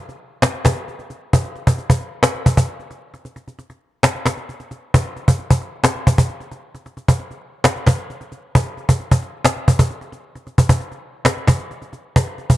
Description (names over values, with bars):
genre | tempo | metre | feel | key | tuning
hip hop | 133 BPM | 4/4 | half-time | none | none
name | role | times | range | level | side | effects
cajon | drums | 0.1-12.6 s | none | -15 LUFS | equal | vintage 12-bit sampler grit
room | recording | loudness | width
light reverb, small room ambience | none | -16 LUFS | side -15 dB against mid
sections
0.0-12.6 A section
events
break 3.1-4.9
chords
none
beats
0.43 0.88 | 1.33 1.78 2.23 2.69 | 3.14 3.59 4.04 4.49 | 4.94 5.39 5.84 6.29 | 6.75 7.20 7.65 8.10 | 8.55 9.00 9.45 9.90 | 10.36 10.81 11.26 11.71 | 12.16